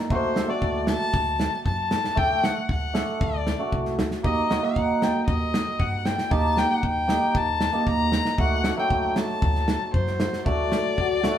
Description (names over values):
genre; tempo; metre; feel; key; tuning
klezmer; 116 BPM; 4/4; straight; D phrygian dominant; A4 = 440 Hz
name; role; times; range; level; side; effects
rich violin; melody; 0.1-11.4 s; C5 to Bb5; -26 LUFS; left 3 dB; none
cimbalom; accompaniment; 0.1-11.4 s; F#3 to A4; -26 LUFS; right 2 dB; none
upright bass; bass; 0.1-11.3 s; C2 to G2; -29 LUFS; equal; none
modern studio drum kit; drums; 0.1-11.4 s; kick drum, snare drum; -27 LUFS; equal; none
trombone with cup mute; second line; 11.0-11.4 s; F#4 to A4; -27 LUFS; left 8 dB; none
room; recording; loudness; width
wet studio reverb, RT60 0.6 s; heard from further back in the room; -21 LUFS; side -10 dB against mid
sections
0.0-11.4 A section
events
none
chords
0.1 D; 4.2 Eb; 8.4 D